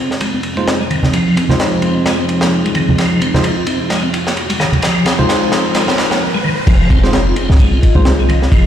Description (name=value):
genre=breakbeat, breaks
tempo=130 BPM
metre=4/4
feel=swing 57% on 16ths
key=F minor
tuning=A4 = 440 Hz
part: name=dark analog pad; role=sustained chords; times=0.0-8.7 s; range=F3 to Eb5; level=-20 LUFS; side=right 1 dB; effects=chorus, vintage 12-bit sampler grit, sidechain pumping
part: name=tonewheel organ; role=riff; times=0.0-8.7 s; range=Eb3 to F4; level=-19 LUFS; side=equal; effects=chorus vibrato, fast rotary speaker, low-pass filter, ping-pong delay
part: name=riser and impact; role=sound effects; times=1.2-8.5 s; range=none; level=-23 LUFS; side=equal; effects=none
part: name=crunchy breakbeat drum kit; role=drums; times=0.1-8.6 s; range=crash cymbal, kick drum, ride cymbal, snare drum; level=-17 LUFS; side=equal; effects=high-pass filter on kick, high-pass filter on cymbals, high-pass filter on snare, high-pass filter on room
part: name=bell-like tine electric piano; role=stabs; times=0.6-8.1 s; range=Ab3 to C5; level=-20 LUFS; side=equal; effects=medium stereo tremolo, ping-pong delay
part: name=congas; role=percussion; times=1.0-5.3 s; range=none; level=-17 LUFS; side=right 1 dB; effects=none
part: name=warm 808-style bass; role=bass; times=6.7-8.7 s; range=F1 to C2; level=-12 LUFS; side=equal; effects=tube saturation
room=moderate lush hall reverb, RT60 1.8 s, small room ambience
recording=played on a big sound system in a bare room, stone room reverb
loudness=-11 LUFS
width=side -10 dB against mid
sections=0.0-6.7 A section; 6.7-8.7 B section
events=build-up 0.0-6.7; filter sweep on analog synth pad 0.0-6.7; riser 1.2-6.7; drum fill 3.0-6.2; break 6.2-6.7; drop 6.7-8.7; impact 6.7-8.5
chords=0.0 Fm7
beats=0.21 0.68 | 1.14 1.60 2.06 2.52 | 2.98 3.44 3.91 4.37 | 4.83 5.29 5.75 6.21 | 6.67 7.14 7.60 8.06 | 8.52